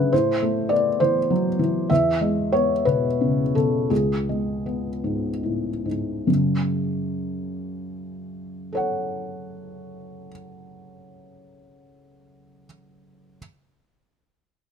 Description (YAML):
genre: neoclassical minimalist piano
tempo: 46-69 BPM (dotted quarters)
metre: 6/8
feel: rubato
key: F# minor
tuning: A4 = 439 Hz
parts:
  - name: felt-muted upright piano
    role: solo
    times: 0.0-13.4 s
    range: C#2 to F#5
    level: -21 LUFS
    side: left 1 dB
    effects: none
room: little or no reverb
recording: close, detailed microphones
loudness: -20 LUFS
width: side -7 dB against mid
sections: 0.0-6.3 A section; 6.3-11.2 B section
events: slowing down 1.0-6.3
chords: 0.1 Amadd9; 1.9 E; 3.9 C#5; 6.3 F#m